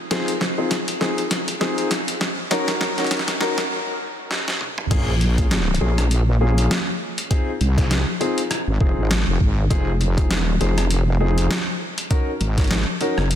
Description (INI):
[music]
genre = glitch hop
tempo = 100 BPM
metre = 4/4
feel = swing 57% on 16ths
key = Bb minor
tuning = A4 = 440 Hz
[part]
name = dark grand piano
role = stabs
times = 0.1-13.2 s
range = Bb3 to Bb4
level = -25 LUFS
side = left 2 dB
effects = vintage 12-bit sampler grit, sidechain pumping, ping-pong delay
[part]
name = boom bap sampler-style drum kit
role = drums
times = 0.1-13.4 s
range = crash cymbal, hi-hat, rim click, snare drum, toms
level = -24 LUFS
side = equal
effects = none
[part]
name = wobble bass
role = bass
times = 4.9-13.4 s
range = F1 to C2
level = -19 LUFS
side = equal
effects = chorus
[part]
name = electronic kick drum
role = drums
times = 4.9-12.7 s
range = none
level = -20 LUFS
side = equal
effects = none
[sound]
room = light reverb, digital ambience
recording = dense, heavily limited modern master, high-pass filter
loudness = -18 LUFS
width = side -10 dB against mid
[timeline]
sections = 0.0-4.9 A section; 4.9-13.4 B section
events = build-up 0.0-4.9; drum fill 0.0-3.7, 4.3-4.9; break 3.7-4.9; drop 4.9-13.4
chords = 0.0 Ab6; 2.5 Ebm7; 4.9 Bbm7; 7.3 Fm7; 12.1 Ebm7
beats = | 0.11 0.71 1.31 1.91 | 2.51 3.11 3.71 4.31 | 4.91 5.51 6.11 6.71 | 7.31 7.91 8.51 9.11 | 9.71 10.31 10.91 11.51 | 12.11 12.71 13.31